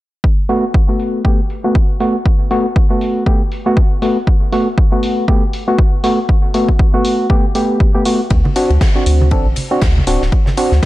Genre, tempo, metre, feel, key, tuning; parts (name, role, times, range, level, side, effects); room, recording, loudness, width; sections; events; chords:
deep house; 119 BPM; 4/4; swing 57% on 16ths; G major; A4 = 440 Hz
electronic kick drum; drums; 0.2-10.9 s; -13 LUFS; equal
percussive organ stab; stabs; 0.5-10.7 s; A3 to A4; -16 LUFS; equal; chorus, sidechain pumping, analog delay
electronic hi-hat; drums; 0.5-10.7 s; -28 LUFS; equal; low-pass filter on hats
round analog bass; bass; 8.3-10.8 s; D1 to D2; -13 LUFS; equal; tube saturation, sidechain pumping
gated 80s drum kit; drums; 8.3-10.9 s; ride cymbal, snare drum; -28 LUFS; left 1 dB; high-pass filter on cymbals, high-pass filter on snare, high-pass filter on room
congas; percussion; 8.5-10.9 s; -23 LUFS; right 2 dB
light reverb, studio ambience; dark, warm production; -12 LUFS; side -17 dB against mid
0.2-10.9 A section
0.2 Gmaj9; 8.3 D7